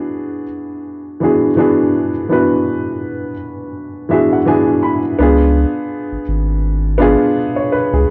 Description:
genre	lo-fi hip hop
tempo	83 BPM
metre	4/4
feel	swing 56% on 16ths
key	unclear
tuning	A4 = 440 Hz
part	dark upright piano	accompaniment	0.0-8.1 s	E3 to B5	-17 LUFS	equal	cassette tape, low-pass filter
part	saturated sub bass	bass	5.2-8.1 s	G#1 to C#2	-17 LUFS	equal	none
room	wet studio reverb, RT60 0.6 s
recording	worn, warbling old tape, cassette tape, warbly pitch drift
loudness	-15 LUFS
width	mono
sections	0.0-5.2 A section; 5.2-8.1 B section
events	none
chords	0.0 E7; 5.2 C#7b9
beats	0.13 0.85 1.57 | 2.29 3.02 3.74 4.46 | 5.19 5.91 6.63 7.35 | 8.08

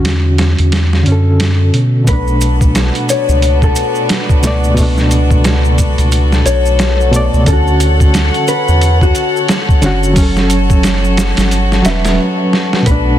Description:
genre	trip hop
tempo	89 BPM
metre	4/4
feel	swing 59% on 16ths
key	B minor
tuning	A4 = 438 Hz
part	bright reed electric piano	accompaniment	0.0-13.2 s	B2 to D5	-16 LUFS	equal	tremolo, tape echo
part	soft dub sub bass	bass	0.0-13.2 s	E1 to B2	-13 LUFS	equal	none
part	boom bap sampler-style drum kit	drums	0.0-13.1 s	hi-hat, kick drum, snare drum	-14 LUFS	equal	small room ambience
part	mellow electric guitar	melody	2.1-13.2 s	F#4 to E5	-18 LUFS	left 4 dB	vintage 12-bit sampler grit, dub echo
part	warm studio violin section	sustained chords	2.1-13.2 s	B3 to F#5	-19 LUFS	left 1 dB	none
part	maracas	percussion	2.1-13.0 s	none	-27 LUFS	right 2 dB	none
room	light reverb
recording	dense, heavily limited modern master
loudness	-9 LUFS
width	side -12 dB against mid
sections	0.0-12.9 A section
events	drum fill 12.5-12.9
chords	0.0 Dmaj7; 2.1 Bm7; 7.5 Dmaj7; 10.2 F#m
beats	0.05 0.73 1.40 | 2.08 2.75 3.42 4.10 | 4.77 5.45 6.12 6.79 | 7.47 8.14 8.82 9.49 | 10.16 10.84 11.51 12.19 | 12.86

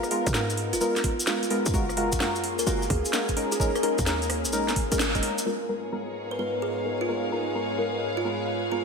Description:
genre	UK garage, two-step garage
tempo	129 BPM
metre	4/4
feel	swing 67% on 16ths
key	G# dorian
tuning	A4 = 441 Hz
part	soft string machine	sustained chords	0.0-8.8 s	G#2 to B4	-33 LUFS	equal	ensemble chorus, sidechain pumping
part	garage drum kit	drums	0.0-5.4 s	hi-hat, rim click, snare drum	-30 LUFS	equal	low-pass filter on hats, low-pass filter on snare
part	cabasa	percussion	0.0-5.4 s	none	-34 LUFS	left 2 dB	none
part	deep mellow chord stab	stabs	0.1-8.8 s	G#3 to A#4	-29 LUFS	equal	chorus, cassette tape, ping-pong delay
part	short 808-style bass	bass	0.3-5.2 s	D#1 to G#2	-30 LUFS	equal	none
part	electronic kick drum	drums	0.3-5.2 s	none	-29 LUFS	equal	none
part	kalimba	melody	0.7-8.8 s	E#4 to B4	-31 LUFS	equal	ping-pong delay
part	warm studio string section	texture	5.5-8.8 s	G#4 to E#5	-33 LUFS	left 2 dB	sidechain pumping
room	wet lush hall reverb, RT60 1.7 s, small room reverb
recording	dreamy mix soaked in reverb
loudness	-24 LUFS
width	side -5 dB against mid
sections	0.0-5.5 A section; 5.5-8.8 B section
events	band accent 5.0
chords	0.0 G#m69; 1.7 F#maj9; 3.4 D#7sus4; 5.5 G#m69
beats	0.34 0.81 1.27 | 1.74 2.20 2.67 3.13 | 3.60 4.06 4.53 4.99 | 5.46 5.92 6.39 6.86 | 7.32 7.79 8.25 8.71

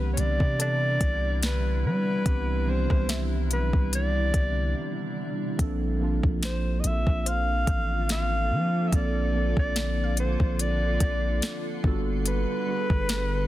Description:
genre	contemporary R&B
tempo	72 BPM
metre	4/4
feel	swing 54% on 16ths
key	unclear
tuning	A4 = 438 Hz
part	mellow alto saxophone	melody	0.0-13.5 s	B4 to F5	-30 LUFS	equal	tape echo
part	muted felt-like synth keys	accompaniment	0.0-13.5 s	Eb3 to A4	-32 LUFS	right 2 dB	chorus
part	granular cloud pad	sustained chords	0.0-13.5 s	C3 to A4	-36 LUFS	equal	built-in reverb, sidechain pumping
part	long sustained 808-style bass	bass	0.0-13.5 s	G1 to G3	-27 LUFS	equal	none
part	smooth R&B drum kit	drums	0.2-13.3 s	hi-hat, kick drum, rim click, snare drum	-26 LUFS	equal	overdrive
part	glassy wavetable pluck	texture	0.6-11.6 s	A4 to F5	-45 LUFS	left 1 dB	chorus, tape echo
room	digital ambience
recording	dense, heavily limited modern master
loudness	-23 LUFS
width	side -14 dB against mid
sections	0.0-13.5 A section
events	break 4.8-5.6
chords	0.0 Cmaj9; 5.6 Bbmaj9; 11.8 Gmaj9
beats	0.59 1.42 | 2.26 3.09 3.92 4.76 | 5.59 6.42 7.26 8.09 | 8.92 9.76 10.59 11.42 | 12.26 13.09

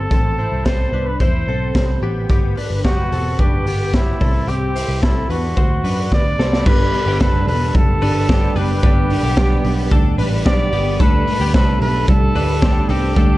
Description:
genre	jangly indie pop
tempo	110 BPM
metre	4/4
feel	straight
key	G major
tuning	A4 = 440 Hz
part	warm trumpet	melody	0.0-13.4 s	E4 to D5	-23 LUFS	right 1 dB	tape echo
part	direct-recorded clean electric guitar	arpeggios	0.0-13.4 s	B3 to C5	-26 LUFS	left 3 dB	analog chorus
part	vintage muted picked electric bass	bass	0.0-13.4 s	E1 to F#2	-20 LUFS	equal	none
part	raw garage drum kit	drums	0.1-13.3 s	crash cymbal, hi-hat, kick drum, snare drum	-17 LUFS	equal	vintage 12-bit sampler grit
part	fingerpicked steel-string acoustic guitar	accompaniment	6.7-13.4 s	G2 to D4	-24 LUFS	right 5 dB	none
part	soft electric-piano-like synth keys	accompaniment	6.7-13.4 s	G3 to G4	-27 LUFS	left 2 dB	none
room	little or no reverb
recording	dark, warm production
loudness	-14 LUFS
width	side -17 dB against mid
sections	0.0-6.7 A section; 6.7-13.4 B section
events	drum fill 6.1-6.7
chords	0.1 Am; 2.3 G; 4.2 C; 5.6 D; 6.7 G; 11.0 Dsus4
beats	| 0.11 0.66 1.21 1.75 | 2.30 2.85 3.39 3.94 | 4.48 5.03 5.57 6.12 | 6.66 7.21 7.75 8.29 | 8.83 9.38 9.92 10.46 | 11.00 11.54 12.08 12.62 | 13.16

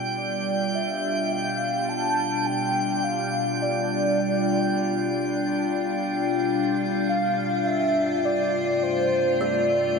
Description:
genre	ambient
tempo	52 BPM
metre	3/4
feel	straight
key	G mixolydian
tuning	A4 = 439 Hz
part	evolving wavetable pad	sustained chords	0.0-10.0 s	G2 to F4	-25 LUFS	left 2 dB	chorus, built-in reverb
part	drifting glass-harmonics texture	texture	0.0-10.0 s	G5 to G6	-30 LUFS	right 2 dB	chorus, built-in reverb
part	warm velvety synth lead	melody	0.2-10.0 s	C5 to A5	-26 LUFS	equal	chorus, ping-pong delay
part	kalimba	arpeggios	9.4-10.0 s	E6	-38 LUFS	right 1 dB	ping-pong delay
room	wet lush hall reverb, RT60 2.6 s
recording	none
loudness	-22 LUFS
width	side -4 dB against mid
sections	0.0-10.0 A section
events	fade-in on ambient pad 0.0-10.0; fade-in on kalimba 0.0-10.0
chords	0.0 G7; 7.1 Dm7/G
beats	| 0.17 1.33 2.48 | 3.64 4.79 5.94 | 7.10 8.25 9.41

